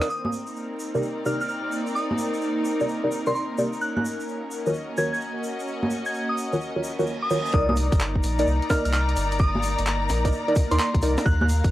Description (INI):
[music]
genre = UK garage, two-step garage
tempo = 129 BPM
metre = 4/4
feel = swing 66% on 16ths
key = unclear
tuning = A4 = 440 Hz
[part]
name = soft synth bell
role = melody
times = 0.0-11.5 s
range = C6 to Ab6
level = -29 LUFS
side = equal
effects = chorus
[part]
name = airy breathy pad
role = sustained chords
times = 0.0-11.7 s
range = Bb3 to C5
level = -34 LUFS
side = equal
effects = chorus, phaser, sidechain pumping
[part]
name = deep mellow chord stab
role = stabs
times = 0.0-11.1 s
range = C3 to D5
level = -26 LUFS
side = equal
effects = chorus, tape echo
[part]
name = breakbeat sampler-style drum kit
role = drums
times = 0.0-11.7 s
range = congas, handclaps, hi-hat, rim click, snare drum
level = -28 LUFS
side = equal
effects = none
[part]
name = egg shaker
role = percussion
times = 0.0-11.7 s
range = none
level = -41 LUFS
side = equal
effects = none
[part]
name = bright symphonic string section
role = texture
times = 0.1-11.7 s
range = C4 to Bb5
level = -30 LUFS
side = left 1 dB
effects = sidechain pumping
[part]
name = reverse cymbal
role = sound effects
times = 6.8-7.5 s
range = none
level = -36 LUFS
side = right 5 dB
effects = none
[part]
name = soft dub sub bass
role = bass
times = 7.5-11.7 s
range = G1 to Eb2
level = -24 LUFS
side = equal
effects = sidechain pumping
[part]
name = electronic kick drum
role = drums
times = 7.5-11.7 s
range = none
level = -22 LUFS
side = equal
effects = none
[sound]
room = light reverb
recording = dry, gritty hardware recording, transformer saturation, vinyl crackle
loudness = -22 LUFS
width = side -15 dB against mid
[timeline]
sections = 0.1-7.5 A section; 7.5-11.7 B section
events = band accent 0.0; reverse cymbal 6.8-7.5; drop 7.5-11.7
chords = 0.1 Cm9; 3.8 Ebm9; 7.5 Cm9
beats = | 0.10 0.56 1.03 1.49 | 1.96 2.42 2.89 3.35 | 3.82 4.28 4.75 5.21 | 5.68 6.14 6.61 7.07 | 7.54 8.00 8.47 8.93 | 9.40 9.86 10.33 10.79 | 11.26